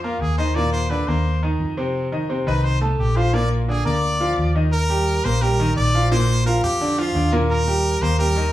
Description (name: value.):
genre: latin, salsa.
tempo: 173 BPM.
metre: 4/4.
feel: straight.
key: Eb major.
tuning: A4 = 440 Hz.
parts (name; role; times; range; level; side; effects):
brilliant trumpet; melody; 0.0-8.5 s; Eb4 to D5; -24 LUFS; left 1 dB; none.
bright concert grand piano; accompaniment; 0.0-8.5 s; Bb2 to Bb5; -22 LUFS; equal; none.
hollow-body short-scale fingered electric bass; bass; 0.0-8.5 s; Bb1 to F2; -21 LUFS; equal; none.
room: moderate studio reverb, RT60 0.5 s.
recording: band playing live in one room, studio reverb.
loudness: -18 LUFS.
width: side -14 dB against mid.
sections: 0.0-4.7 A section; 4.7-8.5 B section.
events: trumpet solo 0.0-4.7.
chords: 0.0 Bb5; 0.6 Eb5; 1.9 F7; 3.3 Bb; 4.7 Eb; 6.1 Bbadd9; 7.5 Eb.